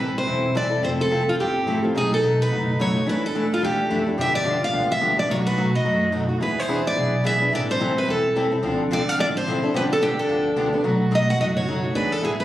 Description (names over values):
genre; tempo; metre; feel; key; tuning
acoustic string swing (jazz manouche); 216 BPM; 4/4; swing 57% on 8ths; unclear; A4 = 440 Hz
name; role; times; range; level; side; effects
picked steel-string acoustic guitar; melody; 0.0-12.4 s; F4 to F#5; -22 LUFS; equal; none
breathy soprano saxophone; second line; 0.0-12.4 s; C4 to G4; -30 LUFS; right 2 dB; none
picked steel-string acoustic guitar; accompaniment; 0.0-12.3 s; B2 to A4; -25 LUFS; left 2 dB; none
upright bass; bass; 0.0-12.4 s; E1 to G2; -28 LUFS; right 1 dB; none
room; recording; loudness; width
moderate studio ambience, RT60 0.4 s; recorded on a phone in the room, club reverb; -19 LUFS; side -14 dB against mid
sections
0.0-8.6 A section; 8.6-12.4 B section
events
none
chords
0.0 Am9; 0.8 Fmaj7; 1.9 B7; 3.1 E7sus4; 4.2 G7; 5.3 B7; 6.4 E7; 7.5 Am7; 8.6 Dm7; 9.7 G7; 10.8 B7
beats
0.27 0.55 | 0.83 1.11 1.39 1.67 | 1.95 2.23 2.50 2.78 | 3.06 3.34 3.62 3.90 | 4.18 4.46 4.74 5.01 | 5.29 5.57 5.85 6.13 | 6.41 6.69 6.96 7.24 | 7.52 7.80 8.08 8.35 | 8.63 8.91 9.19 9.46 | 9.74 10.02 10.30 10.57 | 10.85 11.13 11.40 11.68 | 11.96 12.23